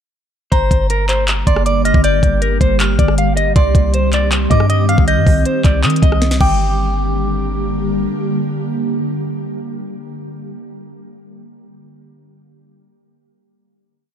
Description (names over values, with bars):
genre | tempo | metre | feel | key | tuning
hip hop, trap | 158 BPM | 4/4 | half-time | G minor | A4 = 442 Hz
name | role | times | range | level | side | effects
clean electric guitar | melody | 0.5-7.7 s | Bb4 to G5 | -19 LUFS | left 1 dB | wide subtle chorus, digital delay
glassy synth bell | second line | 0.5-7.7 s | Bb5 to G6 | -25 LUFS | right 2 dB | chorus, digital delay
ethereal airy pad | sustained chords | 1.1-10.4 s | D3 to G4 | -20 LUFS | equal | ensemble chorus, built-in reverb
warm 808-style bass | bass | 0.5-8.1 s | G1 to Eb3 | -16 LUFS | equal | none
trap drum kit | drums | 0.5-6.5 s | crash cymbal, handclaps, hi-hat, kick drum, rim click, snare drum | -16 LUFS | equal | none
room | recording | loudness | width
digital ambience | dark, warm production | -13 LUFS | side -9 dB against mid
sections
0.5-6.6 hook; 6.6-9.6 final hit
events
drum fill 6.2-6.6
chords
0.5 Gm; 3.6 Cm; 6.4 Gm